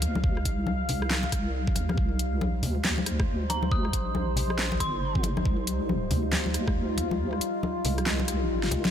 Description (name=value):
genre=deep dubstep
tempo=138 BPM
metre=4/4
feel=swing 61% on 16ths, half-time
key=C minor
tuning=A4 = 440 Hz
part: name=deep dark ambient pad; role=sustained chords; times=0.0-8.9 s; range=G3 to F5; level=-32 LUFS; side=left 1 dB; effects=chorus, built-in reverb
part: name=deep soft wobble bass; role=bass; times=0.0-8.9 s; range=G1 to Eb2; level=-29 LUFS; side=equal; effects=chorus
part: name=dubstep drum kit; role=drums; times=0.0-8.9 s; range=handclaps, hi-hat, rim click, snare drum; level=-31 LUFS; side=equal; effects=overdrive
part: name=congas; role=percussion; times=0.0-8.9 s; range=none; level=-33 LUFS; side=left 3 dB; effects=dub echo
part: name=electronic kick drum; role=drums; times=0.2-6.7 s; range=none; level=-28 LUFS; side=equal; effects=overdrive
part: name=dark detuned synth bell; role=melody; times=3.5-5.2 s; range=Bb5 to Eb6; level=-35 LUFS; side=equal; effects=chorus, dub echo
room=light reverb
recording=none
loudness=-25 LUFS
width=side -9 dB against mid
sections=0.0-8.9 A section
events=kick drops out 7.2-8.9; drum fill 8.6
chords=0.0 Cm